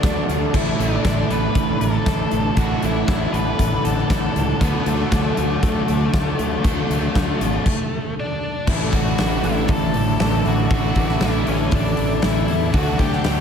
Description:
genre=rock, shoegaze and dream pop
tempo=118 BPM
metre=4/4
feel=straight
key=unclear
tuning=A4 = 439 Hz
part: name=octave-fuzz lead guitar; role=melody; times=0.0-13.4 s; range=A3 to B4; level=-26 LUFS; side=left 1 dB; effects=distortion, tape echo
part: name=brassy analog pad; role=sustained chords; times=0.0-13.4 s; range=A4 to D6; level=-30 LUFS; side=left 1 dB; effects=chorus
part: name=crunchy overdriven guitar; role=riff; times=0.0-13.4 s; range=A2 to D4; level=-28 LUFS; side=right 10 dB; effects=reverse reverb
part: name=overdriven electric guitar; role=riff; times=0.0-13.4 s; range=A2 to F#4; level=-27 LUFS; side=left 8 dB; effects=ensemble chorus
part: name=fuzz fingered electric bass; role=bass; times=0.0-13.4 s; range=G#1 to E2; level=-23 LUFS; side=equal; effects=overdrive
part: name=huge arena drum kit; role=drums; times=0.0-13.4 s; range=crash cymbal, hi-hat, kick drum, snare drum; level=-22 LUFS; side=equal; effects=none
part: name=cranked stack guitar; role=riff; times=0.5-13.4 s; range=A2 to D4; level=-26 LUFS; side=equal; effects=overdrive
room=moderate plate reverb, RT60 2.1 s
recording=dreamy mix soaked in reverb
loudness=-17 LUFS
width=side -7 dB against mid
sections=0.0-8.7 A section; 8.7-13.4 B section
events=stop 7.7-8.7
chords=0.0 D; 0.5 Asus4; 4.6 D; 8.7 Asus4; 12.7 D

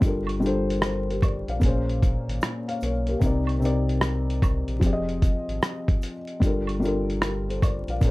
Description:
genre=lo-fi hip hop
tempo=75 BPM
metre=4/4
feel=swing 64% on 16ths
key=G minor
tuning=A4 = 440 Hz
part: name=felt-muted upright piano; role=accompaniment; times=0.0-8.1 s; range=Bb2 to F5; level=-26 LUFS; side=left 2 dB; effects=none
part: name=sub bass with octave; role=bass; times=0.0-8.1 s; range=F1 to C2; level=-29 LUFS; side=equal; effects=none
part: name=dusty soul sampler-style drum kit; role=drums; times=0.0-8.1 s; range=hi-hat, kick drum, rim click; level=-23 LUFS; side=equal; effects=none
part: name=tube shaker and woodblock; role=percussion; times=0.0-8.1 s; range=none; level=-40 LUFS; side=right 7 dB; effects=none
room=light reverb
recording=dark, warm production, vinyl crackle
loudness=-22 LUFS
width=side -20 dB against mid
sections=0.0-8.1 A section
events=none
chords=0.0 Gm7; 1.6 Bbm7; 3.2 Cm7; 4.8 Fm7; 6.4 Gm7

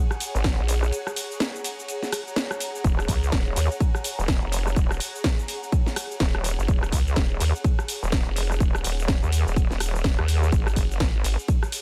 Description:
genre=bass house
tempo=125 BPM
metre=4/4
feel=swing 60% on 16ths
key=Eb minor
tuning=A4 = 440 Hz
part: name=ethereal airy pad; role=texture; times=0.0-11.8 s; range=Ab4 to Cb6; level=-38 LUFS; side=equal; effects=ensemble chorus, built-in reverb, phaser, sidechain pumping
part: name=house drum kit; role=drums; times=0.1-11.8 s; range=hi-hat, ride cymbal, rim click, shaker, snare drum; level=-32 LUFS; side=equal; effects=none
part: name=vowel-sweep wobble bass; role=bass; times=0.3-11.4 s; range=Eb1 to Eb2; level=-26 LUFS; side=equal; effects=chorus, overdrive, sidechain pumping
part: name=electronic kick drum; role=drums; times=0.4-11.6 s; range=none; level=-25 LUFS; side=equal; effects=none
room=little or no reverb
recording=none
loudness=-24 LUFS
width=mono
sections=0.0-11.8 A section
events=break 0.9-2.8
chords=0.0 N.C.; 2.8 Ebm; 10.5 Abm

